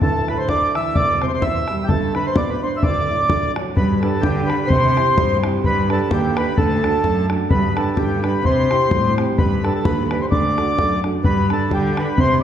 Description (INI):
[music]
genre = celtic folk, Celtic polka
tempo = 128 BPM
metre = 2/4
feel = swing 56% on 8ths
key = unclear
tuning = A4 = 440 Hz
[part]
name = mellow accordion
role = melody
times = 0.0-12.4 s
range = G4 to E5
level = -20 LUFS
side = equal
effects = none
[part]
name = dark baby grand piano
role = accompaniment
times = 0.0-12.4 s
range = D1 to B4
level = -23 LUFS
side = right 3 dB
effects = none
[part]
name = bodhran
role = percussion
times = 0.0-12.3 s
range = none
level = -22 LUFS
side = left 1 dB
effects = none
[part]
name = muted cello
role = bass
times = 3.8-12.4 s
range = D2 to D3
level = -22 LUFS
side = equal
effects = none
[sound]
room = wet recital hall reverb, RT60 1.5 s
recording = heard from further back in the room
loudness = -16 LUFS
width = side -9 dB against mid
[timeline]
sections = 0.0-3.8 A section; 3.8-11.2 B section; 11.2-12.4 B section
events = none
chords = 0.0 Dsus2; 1.0 C/E; 1.9 G; 2.8 D; 3.8 G; 4.7 C; 5.6 G; 6.6 D; 7.5 G; 8.4 C; 9.4 G; 10.3 D; 11.2 G5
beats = | 0.02 0.48 | 0.95 1.42 | 1.89 2.36 | 2.83 3.29 | 3.76 4.23 | 4.70 5.17 | 5.63 6.10 | 6.57 7.04 | 7.51 7.98 | 8.44 8.91 | 9.38 9.85 | 10.32 10.78 | 11.25 11.72 | 12.18